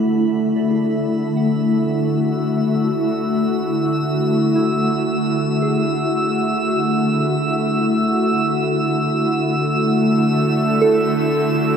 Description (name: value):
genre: ambient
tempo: free time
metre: none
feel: none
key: D lydian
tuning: A4 = 440 Hz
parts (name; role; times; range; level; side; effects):
- glassy FM pad; sustained chords; 0.0-11.8 s; D3 to F#4; -17 LUFS; equal; ensemble chorus, built-in reverb
- drifting glass-harmonics texture; texture; 0.0-11.8 s; B5 to E6; -25 LUFS; right 1 dB; chorus, built-in reverb
- soft synth bell; arpeggios; 0.6-11.8 s; E4 to F#5; -25 LUFS; right 3 dB; chorus, phaser
- bowed-like drone; drone; 9.7-11.8 s; D3 to A3; -22 LUFS; right 1 dB; built-in reverb
room: wet huge ambient reverb, RT60 8.1 s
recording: in a vast, echoing space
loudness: -16 LUFS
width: side -7 dB against mid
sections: 0.4-11.8 A section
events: fade-in on synth bell 0.4-11.8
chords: 0.4 Dadd9